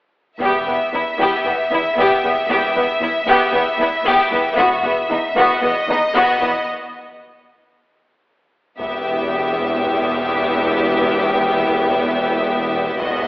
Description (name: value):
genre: cinematic, epic orchestral film score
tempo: 114 BPM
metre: 4/4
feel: straight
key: E harmonic minor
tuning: A4 = 438 Hz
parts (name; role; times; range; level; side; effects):
- clear symphonic violin section; melody; 0.4-13.3 s; D#5 to E5; -22 LUFS; equal; none
- rich chamber violin section; second line; 0.4-13.3 s; B3 to G4; -18 LUFS; left 1 dB; none
- clear symphonic viola section; accompaniment; 0.4-13.3 s; B3; -22 LUFS; equal; none
- rich symphonic cello section; bass; 0.4-13.3 s; E2; -23 LUFS; equal; none
- rich symphonic double bass section; bass; 0.4-4.8, 8.8-13.3 s; E1; -28 LUFS; equal; none
- taiko ensemble; drums; 0.4-1.4, 4.6-5.6, 8.8-9.8, 13.0-13.3 s; none; -37 LUFS; equal; none
room: wet scoring stage reverb, RT60 1.6 s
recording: telephone sound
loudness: -15 LUFS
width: side -20 dB against mid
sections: 0.4-8.8 A section; 8.8-13.3 B section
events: break 6.7-8.8; build-up 8.8-13.3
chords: 0.4 Em